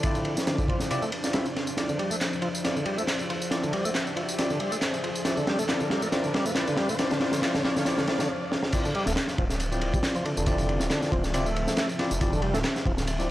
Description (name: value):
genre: breakbeat, breaks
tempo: 138 BPM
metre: 4/4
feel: swing 54% on 16ths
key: D minor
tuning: A4 = 440 Hz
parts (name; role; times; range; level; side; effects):
- deep dark ambient pad; sustained chords; 0.0-13.3 s; F3 to F5; -34 LUFS; left 1 dB; chorus, built-in reverb, vintage 12-bit sampler grit, sidechain pumping
- overdriven tonewheel organ; riff; 0.0-12.9 s; C3 to A3; -31 LUFS; equal; chorus vibrato, slow rotary speaker, tube saturation, tape echo
- bell-like tine electric piano; stabs; 0.0-13.3 s; C4 to E5; -33 LUFS; left 1 dB; lush chorus, low-pass filter, tape echo
- crunchy breakbeat drum kit; drums; 0.0-13.2 s; crash cymbal, kick drum, ride cymbal, snare drum; -28 LUFS; equal; none
- electronic tambourine and handclaps; drums; 0.0-13.3 s; none; -35 LUFS; equal; none
- riser; sound effects; 0.1-8.3 s; none; -37 LUFS; right 1 dB; none
- phased detuned saw bass; bass; 9.1-13.3 s; D1 to F1; -30 LUFS; equal; phaser
room: light reverb, small room ambience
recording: dry, gritty hardware recording, cassette tape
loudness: -24 LUFS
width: side -15 dB against mid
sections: 0.0-8.7 A section; 8.7-13.3 B section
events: build-up 0.0-8.7; filter sweep on tine electric piano 0.0-8.7; riser 0.1-8.3; drum fill 1.8-8.3, 8.5; break 8.3-8.7; drop 8.7-13.3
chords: 0.0 Dm9